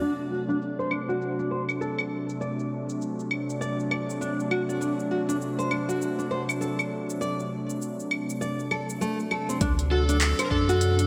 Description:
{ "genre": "organic downtempo", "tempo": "100 BPM", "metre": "4/4", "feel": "swing 60% on 16ths", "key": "unclear", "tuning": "A4 = 436 Hz", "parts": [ { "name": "warm analog pad", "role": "sustained chords", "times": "0.0-11.1 s", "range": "C3 to D4", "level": "-33 LUFS", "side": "equal", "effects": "chorus, vintage 12-bit sampler grit, sidechain pumping" }, { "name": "nylon-string guitar", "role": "arpeggios", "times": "0.0-11.1 s", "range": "A3 to D5", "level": "-32 LUFS", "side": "equal", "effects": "low-pass filter, delay" }, { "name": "deep house drum kit", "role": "drums", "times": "0.0-11.1 s", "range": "claves, handclaps, hi-hat, shaker", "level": "-34 LUFS", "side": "equal", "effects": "low-pass filter on hats, low-pass filter on perc, low-pass filter on snare" }, { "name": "warm sub bass", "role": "bass", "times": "9.6-11.1 s", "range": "D2 to F#2", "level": "-27 LUFS", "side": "equal", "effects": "sidechain pumping" }, { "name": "electronic kick drum", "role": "drums", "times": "9.6-10.7 s", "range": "none", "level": "-30 LUFS", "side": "equal", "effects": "none" }, { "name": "overdriven slide guitar", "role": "melody", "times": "9.9-11.1 s", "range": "A4 to Bb4", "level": "-34 LUFS", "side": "equal", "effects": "delay" } ], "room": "wet lush hall reverb, RT60 2.6 s", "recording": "bright 1980s-style digital production", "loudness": "-28 LUFS", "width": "mono", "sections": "0.0-9.6 A section; 9.6-11.1 B section", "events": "filter sweep on nylon-string guitar 0.0-9.6", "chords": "0.0 D7", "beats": "| 0.01 0.61 1.21 1.81 | 2.41 3.01 3.61 4.21 | 4.81 5.41 6.01 6.61 | 7.21 7.81 8.41 9.01 | 9.61 10.21 10.81" }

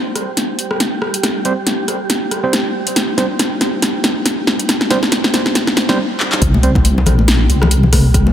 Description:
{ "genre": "deep dubstep", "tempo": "139 BPM", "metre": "4/4", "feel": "swing 56% on 16ths, half-time", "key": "unclear", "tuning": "A4 = 436 Hz", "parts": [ { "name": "wind-like tuned noise texture", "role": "texture", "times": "0.0-8.3 s", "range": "G3 to G4", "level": "-25 LUFS", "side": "right 3 dB", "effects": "built-in reverb" }, { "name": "deep house drum kit", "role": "drums", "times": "0.2-8.2 s", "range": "handclaps, hi-hat, rim click, snare drum", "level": "-16 LUFS", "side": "equal", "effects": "overdrive" }, { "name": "overdriven tine electric piano", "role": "stabs", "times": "1.5-6.7 s", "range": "G3 to C5", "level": "-23 LUFS", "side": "right 3 dB", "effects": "medium tremolo, low-pass filter, dub echo" }, { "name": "deep soft wobble bass", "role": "bass", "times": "6.4-8.3 s", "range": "Bb1 to C2", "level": "-12 LUFS", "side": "equal", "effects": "chorus" }, { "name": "electronic kick drum", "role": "drums", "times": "6.4-8.2 s", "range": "none", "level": "-15 LUFS", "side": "equal", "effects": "overdrive" }, { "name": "congas and bongos", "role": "percussion", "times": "6.5-8.3 s", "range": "none", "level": "-18 LUFS", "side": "left 3 dB", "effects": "dub echo" } ], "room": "light reverb", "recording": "none", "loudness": "-13 LUFS", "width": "side -10 dB against mid", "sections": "0.0-6.4 A section; 6.4-8.3 B section", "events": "build-up 0.0-6.4; drum fill 0.0-6.0, 6.2; drop 6.4-8.3", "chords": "0.0 N.C.; 6.4 C5", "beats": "0.37 0.80 | 1.24 1.67 2.10 2.53 | 2.96 3.39 3.83 4.26 | 4.69 5.12 5.55 5.98 | 6.42 6.85 7.28 7.71 | 8.14" }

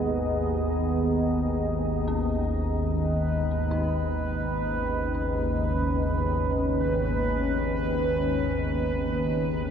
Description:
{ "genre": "dark ambient drone", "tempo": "free time", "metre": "none", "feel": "none", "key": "unclear", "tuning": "A4 = 441 Hz", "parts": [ { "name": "deep dark ambient pad", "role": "sustained chords", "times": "0.0-9.7 s", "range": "B3 to D#5", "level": "-28 LUFS", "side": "right 1 dB", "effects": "chorus, built-in reverb" }, { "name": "organ-like drone", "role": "drone", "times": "0.0-9.7 s", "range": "G#1 to D#2", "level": "-27 LUFS", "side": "left 1 dB", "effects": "ensemble chorus, built-in reverb" }, { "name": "dark detuned synth bell", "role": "arpeggios", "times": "2.1-9.7 s", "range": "C#4 to D#4", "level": "-42 LUFS", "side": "left 1 dB", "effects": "chorus, ping-pong delay" }, { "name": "bubbling stepped-filter texture", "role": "texture", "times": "3.0-9.7 s", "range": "B4", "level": "-33 LUFS", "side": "right 4 dB", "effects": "chorus, built-in reverb" } ], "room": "wet huge ambient reverb, RT60 8.9 s", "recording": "cassette tape", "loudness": "-24 LUFS", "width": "side -8 dB against mid", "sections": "0.0-9.7 A section", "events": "fade-out on synth bell 0.0-9.7", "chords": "0.0 G#m", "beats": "free time" }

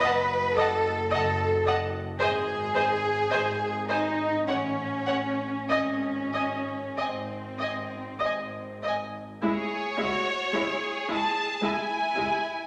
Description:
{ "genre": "classical, slow romantic movement for string orchestra", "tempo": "46-56 BPM", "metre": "3/4", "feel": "rubato", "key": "C# minor", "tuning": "A4 = 440 Hz", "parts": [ { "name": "clear symphonic violin section", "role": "melody", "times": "0.0-12.7 s", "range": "C#5 to A5", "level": "-34 LUFS", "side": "equal", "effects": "none" }, { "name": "warm symphonic violin section", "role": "second line", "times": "0.0-12.7 s", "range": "E4 to F#5", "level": "-37 LUFS", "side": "equal", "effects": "none" }, { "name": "rich symphonic viola section", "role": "accompaniment", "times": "0.0-12.2 s", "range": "G#3 to D#5", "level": "-33 LUFS", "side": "equal", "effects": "none" }, { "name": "rich symphonic cello section", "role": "bass", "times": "0.0-12.3 s", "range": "C#2 to B4", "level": "-31 LUFS", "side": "equal", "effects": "none" }, { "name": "rich symphonic double bass section", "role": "bass", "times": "0.0-12.3 s", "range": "F#1 to C#2", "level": "-40 LUFS", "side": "equal", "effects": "none" } ], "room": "wet recital hall reverb, RT60 1.4 s", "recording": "none", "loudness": "-28 LUFS", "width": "mono", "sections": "0.0-9.5 A section; 9.5-12.7 B section", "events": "none", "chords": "0.0 D#dim/F#; 2.2 G#5; 4.5 F#m/A; 5.7 G#; 9.5 C#m", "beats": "0.02 1.12 | 2.20 3.31 4.46 | 5.70 6.99 8.23 | 9.45 10.56 11.65" }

